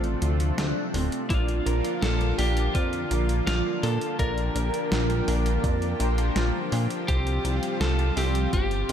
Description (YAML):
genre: synthwave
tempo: 83 BPM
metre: 4/4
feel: straight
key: unclear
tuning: A4 = 440 Hz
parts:
  - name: lightly driven lead guitar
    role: melody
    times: 0.0-8.9 s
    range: F4 to Bb4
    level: -31 LUFS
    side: right 1 dB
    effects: vintage 12-bit sampler grit, tape echo, shimmer reverb
  - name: lush unison pad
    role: sustained chords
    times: 0.0-8.9 s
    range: C3 to G4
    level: -32 LUFS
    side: equal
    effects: chorus, sidechain pumping, shimmer reverb
  - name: mellow electric guitar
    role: arpeggios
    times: 0.0-8.9 s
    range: C4 to D5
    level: -34 LUFS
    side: right 2 dB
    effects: vintage 12-bit sampler grit, tape echo, shimmer reverb
  - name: chorused polysynth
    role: stabs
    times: 0.0-8.9 s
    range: G3 to D5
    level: -34 LUFS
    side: left 3 dB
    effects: cassette tape, tape echo, shimmer reverb
  - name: chorused synth bass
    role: bass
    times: 0.0-8.9 s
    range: D1 to Bb2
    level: -26 LUFS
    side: equal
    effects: tube saturation, sidechain pumping
  - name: clean 12-bit digital drum machine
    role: drums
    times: 0.0-8.9 s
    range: hi-hat, snare drum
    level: -33 LUFS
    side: equal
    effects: overdrive
  - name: electronic kick drum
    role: drums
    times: 1.3-8.7 s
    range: none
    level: -27 LUFS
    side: equal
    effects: overdrive
room: moderate plate reverb, RT60 2.5 s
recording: dreamy mix soaked in reverb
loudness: -23 LUFS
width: side -9 dB against mid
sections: 0.0-8.9 A section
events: none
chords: 0.0 Dm7; 1.3 Bb; 7.1 Csus4